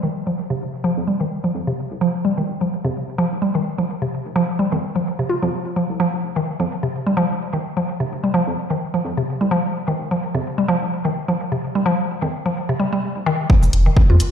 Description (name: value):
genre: minimal techno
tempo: 128 BPM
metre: 4/4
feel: swing 56% on 16ths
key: unclear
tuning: A4 = 439 Hz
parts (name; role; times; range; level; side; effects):
- mallet-like synth pluck; riff; 0.0-14.2 s; C3 to F4; -19 LUFS; equal; chorus, cassette tape, sidechain pumping, dub echo
- round analog bass; bass; 0.0-14.2 s; F1 to F2; -22 LUFS; equal; sidechain pumping, high-pass filter
- electronic kick drum; drums; 13.5-14.1 s; none; -13 LUFS; equal; overdrive
- electronic cabasa and hi-hat; drums; 13.6-14.3 s; none; -27 LUFS; left 2 dB; overdrive, low-pass filter on snare, low-pass filter on perc, low-pass filter on hats
room: wet lush hall reverb, RT60 1.6 s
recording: played on a big sound system in a bare room, large studio reverb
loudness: -18 LUFS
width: side -8 dB against mid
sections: 0.0-13.5 A section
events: filter sweep on synth arpeggio sound 0.0-13.5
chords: none